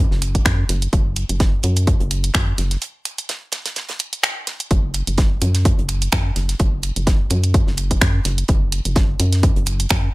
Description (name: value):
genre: minimal techno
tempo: 127 BPM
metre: 4/4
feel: swing 55% on 16ths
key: unclear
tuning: A4 = 440 Hz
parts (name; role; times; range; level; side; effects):
- rubbery square bass; bass; 0.0-10.1 s; F#1 to F#2; -20 LUFS; equal; sidechain pumping
- damped 70s drum kit; drums; 0.1-10.0 s; hi-hat, snare drum; -31 LUFS; right 3 dB; high-pass filter on hats, high-pass filter on snare, high-pass filter on room
- house drum kit; drums; 0.2-10.0 s; finger snaps, hi-hat; -22 LUFS; right 1 dB; overdrive
- electronic kick drum; drums; 0.3-10.0 s; none; -18 LUFS; equal; overdrive
room: little or no reverb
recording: none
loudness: -16 LUFS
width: side -20 dB against mid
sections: 0.0-4.7 A section; 4.7-10.1 B section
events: break 2.8-4.7; drop 4.7-10.1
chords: none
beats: 0.46 | 0.93 1.40 1.87 2.35 | 2.82 3.29 3.76 4.24 | 4.71 5.18 5.65 6.12 | 6.60 7.07 7.54 8.02 | 8.49 8.96 9.43 9.90